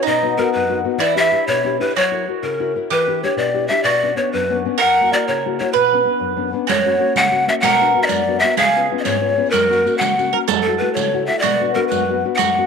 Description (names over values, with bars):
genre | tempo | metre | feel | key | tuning
italian folk, Italian serenade | 126 BPM (dotted quarters) | 6/8 | straight | B harmonic minor | A4 = 439 Hz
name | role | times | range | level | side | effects
breathy large pan pipes | melody | 0.0-12.7 s | A4 to F#5 | -17 LUFS | left 1 dB | none
bowl-back mandolin | second line | 0.0-12.7 s | D#4 to B4 | -22 LUFS | right 11 dB | none
nylon-string guitar | accompaniment | 0.0-12.7 s | F#2 to A#4 | -22 LUFS | left 11 dB | none
riq | percussion | 6.7-12.6 s | none | -24 LUFS | right 16 dB | none
room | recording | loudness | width
moderate spring reverb, RT60 2.4 s | 1960s-style stereo with parts hard left and right | -15 LUFS | side -6 dB against mid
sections
0.0-12.7 A section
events
none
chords
0.1 B; 1.0 Em7; 1.9 F#7; 2.9 Em7; 3.9 Bmadd9; 4.8 F#7; 5.7 Bmadd9; 6.7 F#; 7.6 Bm; 8.6 C#7; 9.5 F#; 10.5 F#m7; 11.4 Bm